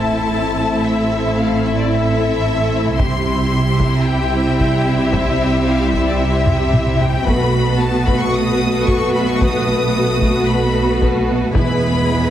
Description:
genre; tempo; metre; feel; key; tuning
cinematic, epic orchestral film score; 112 BPM; 4/4; straight; unclear; A4 = 440 Hz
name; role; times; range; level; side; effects
rich symphonic violin section; melody; 0.0-12.3 s; D5 to D#6; -23 LUFS; left 4 dB; none
rich symphonic violin section; second line; 0.0-12.3 s; E4 to B4; -24 LUFS; left 3 dB; none
dark symphonic viola section; accompaniment; 0.0-12.3 s; G#3 to E4; -24 LUFS; right 1 dB; none
mellow French horn section; sustained chords; 0.0-12.3 s; G3 to F#4; -24 LUFS; left 2 dB; none
warm symphonic string section; sustained chords; 0.0-12.3 s; B3 to E5; -22 LUFS; left 2 dB; none
warm symphonic cello section; bass; 0.0-12.3 s; E2 to C3; -21 LUFS; right 2 dB; none
warm symphonic double bass section; bass; 0.0-12.3 s; E1 to C2; -22 LUFS; right 2 dB; none
sub drop; sound effects; 0.0-0.8 s; none; -40 LUFS; equal; none
taiko ensemble; drums; 3.0-12.0 s; none; -21 LUFS; equal; none
room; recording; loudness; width
moderate scoring stage reverb, RT60 1.5 s; heavily compressed radio sound, multiband compression; -14 LUFS; side -11 dB against mid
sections
0.0-12.3 A section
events
impact 0.0-0.8; drum fill 6.5-7.3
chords
0.0 Am; 3.0 C; 7.3 B7; 11.5 E

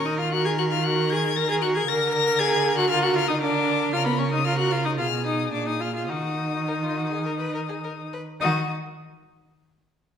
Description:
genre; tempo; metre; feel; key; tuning
quick classical-period movement for string quartet; 101-119 BPM; 4/4; rubato; Eb minor; A4 = 440 Hz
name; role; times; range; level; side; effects
rich violin; melody; 0.0-8.7 s; Cb6 to Bb6; -27 LUFS; left 10 dB; none
clear violin; second line; 0.0-8.7 s; F4 to Cb5; -30 LUFS; left 3 dB; none
rich viola; accompaniment; 0.0-8.7 s; Cb4 to Bb4; -26 LUFS; right 2 dB; none
rich cello; bass; 0.0-8.7 s; Bb2 to Eb3; -29 LUFS; right 2 dB; none
room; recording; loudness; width
wet recital hall reverb, RT60 1.4 s; none; -21 LUFS; side -8 dB against mid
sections
0.0-8.4 A section; 8.4-10.2 B section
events
slowing down 2.9-8.4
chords
0.0 Eb5; 1.9 Bb/D; 3.9 Bbm/Db; 5.0 Abm/Cb; 5.5 Bb7; 6.1 Ebm; 8.4 N.C.

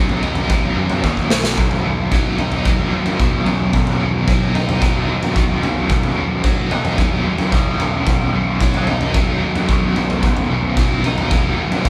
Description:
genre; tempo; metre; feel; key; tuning
psychedelic rock; 111 BPM; 4/4; straight; B major; A4 = 439 Hz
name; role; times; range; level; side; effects
biting overdriven guitar; riff; 0.0-11.9 s; B1 to D#4; -21 LUFS; equal; tremolo
growling picked electric bass; bass; 0.0-11.9 s; B1 to F#2; -26 LUFS; equal; overdrive
raw garage drum kit; drums; 0.1-11.9 s; kick drum, snare drum, toms; -20 LUFS; equal; none
room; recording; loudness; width
light reverb; band playing live in one room; -17 LUFS; mono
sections
0.0-11.9 A section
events
drum fill 1.0-1.6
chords
0.0 B

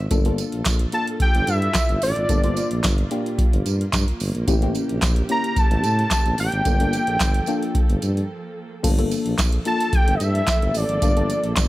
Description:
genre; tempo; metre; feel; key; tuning
early-eighties boogie funk; 110 BPM; 4/4; straight; G dorian; A4 = 440 Hz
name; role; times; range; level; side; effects
warm studio string section; sustained chords; 0.0-11.7 s; Bb2 to A4; -33 LUFS; right 3 dB; none
mellow tuba; bass; 0.0-11.7 s; G1 to A2; -24 LUFS; equal; none
mellow FM electric piano; accompaniment; 0.1-11.5 s; Bb3 to C5; -26 LUFS; left 3 dB; chorus, phaser
booming analog drum machine; drums; 0.1-11.7 s; crash cymbal, handclaps, hi-hat, kick drum, snare drum; -20 LUFS; equal; none
tambourine; percussion; 0.1-11.7 s; none; -34 LUFS; right 12 dB; none
fat analog lead; melody; 0.9-11.7 s; D5 to Bb5; -24 LUFS; equal; none
room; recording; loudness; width
little or no reverb; none; -18 LUFS; side -17 dB against mid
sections
0.0-8.8 A section; 8.8-11.7 A section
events
break 8.3-8.8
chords
0.1 Gm9; 4.5 A7b9; 6.7 Gm9

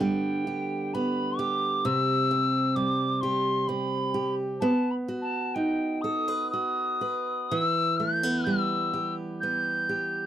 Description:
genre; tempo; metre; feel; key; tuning
celtic folk, Celtic slow air; 60-66 BPM; 3/4; rubato; E minor; A4 = 443 Hz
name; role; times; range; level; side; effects
mellow tin whistle; melody; 0.0-10.3 s; G5 to G6; -28 LUFS; left 1 dB; none
picked steel-string acoustic guitar; accompaniment; 0.0-10.3 s; C3 to B4; -28 LUFS; right 1 dB; none
room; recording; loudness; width
little or no reverb; dry, close 1970s-style studio recording; -25 LUFS; side -11 dB against mid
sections
0.0-10.3 A section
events
none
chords
0.0 G/D; 1.9 C; 4.6 B; 7.5 Em

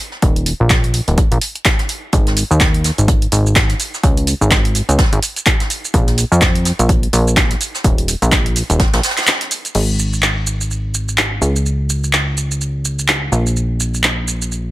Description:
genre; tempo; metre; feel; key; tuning
piano house; 126 BPM; 4/4; swing 58% on 16ths; unclear; A4 = 440 Hz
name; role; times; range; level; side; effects
jazz brush drum kit; drums; 0.1-9.6 s; hi-hat, snare drum; -25 LUFS; right 2 dB; high-pass filter on hats, high-pass filter on snare, high-pass filter on room
plucky analog bass; bass; 0.2-14.7 s; D#1 to E#2; -16 LUFS; equal; sidechain pumping
electronic kick drum; drums; 0.2-8.9 s; none; -15 LUFS; equal; none
punchy analog drum machine; drums; 0.2-14.6 s; crash cymbal, handclaps, hi-hat, shaker; -18 LUFS; right 1 dB; none
room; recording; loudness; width
little or no reverb; none; -13 LUFS; side -17 dB against mid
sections
0.0-9.7 A section; 9.7-14.7 B section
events
none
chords
none

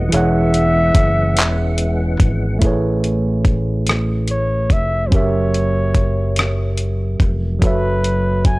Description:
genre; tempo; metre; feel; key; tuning
slow six-eight R&B; 48 BPM (dotted quarters); 6/8; straight; unclear; A4 = 440 Hz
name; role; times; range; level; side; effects
mellow tine electric piano; accompaniment; 0.0-8.6 s; E3 to F#5; -21 LUFS; right 2 dB; none
percussive tonewheel organ; sustained chords; 0.0-2.6 s; E3 to F#5; -26 LUFS; equal; overdrive, chorus vibrato, slow rotary speaker
fingered electric bass; bass; 0.0-8.6 s; E1 to A1; -19 LUFS; equal; tube saturation
mellow flugelhorn; melody; 0.1-8.6 s; B4 to G#5; -21 LUFS; left 1 dB; none
dusty soul sampler-style drum kit; drums; 0.1-8.6 s; handclaps, hi-hat, kick drum, rim click; -16 LUFS; equal; none
room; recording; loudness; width
digital ambience; dry, gritty hardware recording, cassette tape; -14 LUFS; side -22 dB against mid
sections
0.0-2.6 A section; 2.6-8.6 B section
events
none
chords
0.1 E69; 2.6 Amaj9; 5.1 F#7b9; 7.6 B7sus4/F#

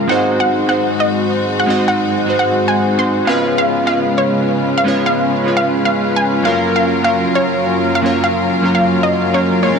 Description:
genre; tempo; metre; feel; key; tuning
future bass; 151 BPM; 4/4; swing 56% on 16ths, half-time; unclear; A4 = 435 Hz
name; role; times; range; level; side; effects
glassy digital keys; accompaniment; 0.0-9.7 s; Gb3 to Eb5; -20 LUFS; right 2 dB; chorus, tape echo
rich symphonic string section; sustained chords; 0.0-9.8 s; Gb2 to Gb4; -24 LUFS; left 1 dB; none
soft supersaw; riff; 0.0-9.8 s; Gb3 to Gb5; -16 LUFS; equal; vintage 12-bit sampler grit, low-pass filter
wide unison pluck; melody; 0.1-9.8 s; Db5 to C6; -18 LUFS; equal; cassette tape, digital delay
thumb-piano-like synth pluck; arpeggios; 9.6-9.8 s; Bb3 to Db4; -22 LUFS; right 5 dB; chorus
room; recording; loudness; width
moderate huge ambient reverb, RT60 4.6 s; none; -12 LUFS; side -6 dB against mid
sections
0.0-9.8 A section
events
filter sweep on supersaw synth 0.0-9.8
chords
0.1 Ab7; 3.3 Db7; 6.5 Gbmaj7

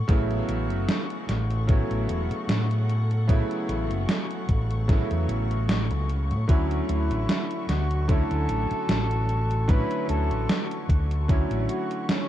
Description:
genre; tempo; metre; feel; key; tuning
vaporwave; 75 BPM; 4/4; swing 54% on 16ths; A major; A4 = 441 Hz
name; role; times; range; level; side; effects
warm chamber string section; sustained chords; 0.0-12.3 s; F#4 to C#6; -38 LUFS; left 3 dB; none
bright electric grand piano; accompaniment; 0.1-12.3 s; C#3 to E4; -30 LUFS; right 1 dB; wide subtle chorus, tape echo
overdriven fingered electric bass; bass; 0.1-11.6 s; E1 to A2; -25 LUFS; equal; none
electronic kick drum; drums; 0.1-11.5 s; none; -21 LUFS; equal; vintage 12-bit sampler grit
gated 80s digital drum machine; drums; 0.1-12.3 s; hi-hat, snare drum; -28 LUFS; right 1 dB; gated reverb, gated reverb snare, vintage 12-bit sampler grit
warm flugelhorn; melody; 6.5-12.3 s; C#4 to B4; -32 LUFS; left 1 dB; tape echo
room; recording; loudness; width
light reverb; dark, warm production, cassette tape; -22 LUFS; side -12 dB against mid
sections
0.0-12.3 A section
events
none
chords
0.0 A6; 6.5 Dmaj9

